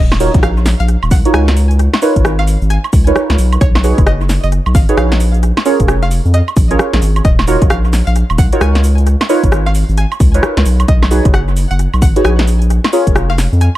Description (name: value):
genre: UK garage, two-step garage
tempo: 132 BPM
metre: 4/4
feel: swing 62% on 16ths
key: Eb minor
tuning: A4 = 440 Hz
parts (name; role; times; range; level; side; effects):
- string-like resonator pluck; melody; 0.0-13.8 s; C#5 to Ab5; -24 LUFS; equal; chorus, cassette tape, tape echo
- saturated sub bass; bass; 0.0-13.7 s; Eb1 to F2; -12 LUFS; equal; sidechain pumping
- house drum kit; drums; 0.1-13.8 s; cabasa, hi-hat, rim click, snare drum, woodblock; -18 LUFS; equal; analog delay
- deep mellow chord stab; stabs; 0.2-13.0 s; Db4 to Db5; -16 LUFS; right 2 dB; chorus, tape echo
- electronic kick drum; drums; 0.3-13.1 s; none; -12 LUFS; equal; none
room: little or no reverb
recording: echo-heavy mix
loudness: -9 LUFS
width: side -15 dB against mid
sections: 0.0-13.8 A section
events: none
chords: 0.0 Ebm9; 1.6 Db13; 3.6 B69; 5.2 Bbm7; 7.2 Ebm9; 8.8 Db13; 10.9 B69; 12.5 Bbm7